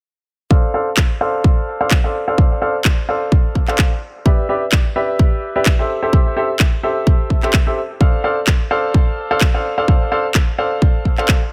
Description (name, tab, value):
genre	piano house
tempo	128 BPM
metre	4/4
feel	swing 55% on 16ths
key	D dorian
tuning	A4 = 440 Hz
part	clear grand piano	riff	0.5-11.4 s	G4 to F5	-21 LUFS	equal	sidechain pumping, low-pass filter, dub echo
part	electronic kick drum	drums	0.5-11.4 s	none	-16 LUFS	equal	none
part	electronic handclaps	drums	1.0-11.4 s	none	-23 LUFS	equal	none
room	digital ambience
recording	echo-heavy mix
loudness	-16 LUFS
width	mono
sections	0.5-11.5 A section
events	filter sweep on grand piano 0.5-11.5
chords	0.5 Dm7; 4.3 Em7; 5.9 Am7; 8.0 Dm7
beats	| 0.51 0.97 1.44 1.91 | 2.38 2.85 3.32 3.79 | 4.26 4.72 5.19 5.66 | 6.13 6.60 7.07 7.54 | 8.01 8.47 8.94 9.41 | 9.88 10.35 10.82 11.29